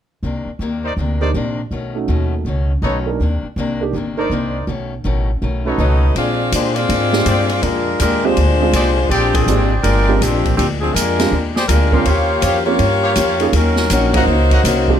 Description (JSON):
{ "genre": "jazz, big band swing", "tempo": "162 BPM", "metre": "4/4", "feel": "swing 64% on 8ths", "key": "Bb mixolydian", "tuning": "A4 = 441 Hz", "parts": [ { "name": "picked steel-string acoustic guitar", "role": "accompaniment", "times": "0.2-14.9 s", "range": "Bb2 to C5", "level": "-24 LUFS", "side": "left 5 dB", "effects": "none" }, { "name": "upright bass", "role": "bass", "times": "0.2-15.0 s", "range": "G1 to Bb2", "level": "-18 LUFS", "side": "equal", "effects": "none" }, { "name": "clear trumpet section", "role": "stabs", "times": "0.8-14.6 s", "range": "Eb4 to C6", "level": "-22 LUFS", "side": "equal", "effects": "none" }, { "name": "warm upright piano", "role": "accompaniment", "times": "1.2-15.0 s", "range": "Ab3 to Bb4", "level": "-20 LUFS", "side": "right 6 dB", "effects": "none" }, { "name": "clear saxophone section", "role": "melody", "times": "5.8-15.0 s", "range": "F3 to D5", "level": "-17 LUFS", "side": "left 2 dB", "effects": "none" }, { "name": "open jazz drum kit", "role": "drums", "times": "6.2-14.9 s", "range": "hi-hat, kick drum, ride cymbal, snare drum", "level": "-22 LUFS", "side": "left 1 dB", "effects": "none" } ], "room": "light reverb", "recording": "close, detailed microphones", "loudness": "-14 LUFS", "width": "side -9 dB against mid", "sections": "0.2-6.2 A section; 6.2-15.0 B section", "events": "band accent 9.3, 14.1", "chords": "0.2 Cm9; 1.7 B9; 3.2 Cm9; 4.7 B9; 6.2 Bb13; 12.1 Eb13; 13.5 Ebm7" }